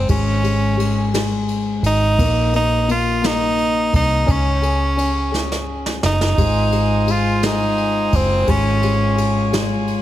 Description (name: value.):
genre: six-eight pop ballad.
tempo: 57 BPM (dotted quarters).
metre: 6/8.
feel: straight.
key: Db major.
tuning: A4 = 440 Hz.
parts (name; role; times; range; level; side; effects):
bright tenor saxophone; melody; 0.0-9.5 s; C4 to F4; -20 LUFS; right 2 dB; tape echo.
dark upright piano; accompaniment; 0.0-10.0 s; Ab3 to Ab4; -22 LUFS; left 5 dB; none.
vintage muted fingered electric bass; bass; 0.0-10.0 s; Gb1 to Db2; -20 LUFS; equal; none.
jazz brush drum kit; drums; 0.1-10.0 s; kick drum, ride cymbal, snare drum; -24 LUFS; equal; none.
tonewheel organ; sustained chords; 6.4-10.0 s; F4 to Ab5; -26 LUFS; right 1 dB; overdrive, stopped rotary speaker.
room: studio reverb.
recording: none.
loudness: -15 LUFS.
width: side -13 dB against mid.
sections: 0.0-10.0 A section.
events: drum fill 5.3-6.4.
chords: 0.1 Db5/Ab; 2.2 Bbsus24; 4.3 Db5; 6.4 Ab6; 8.5 Db/Ab.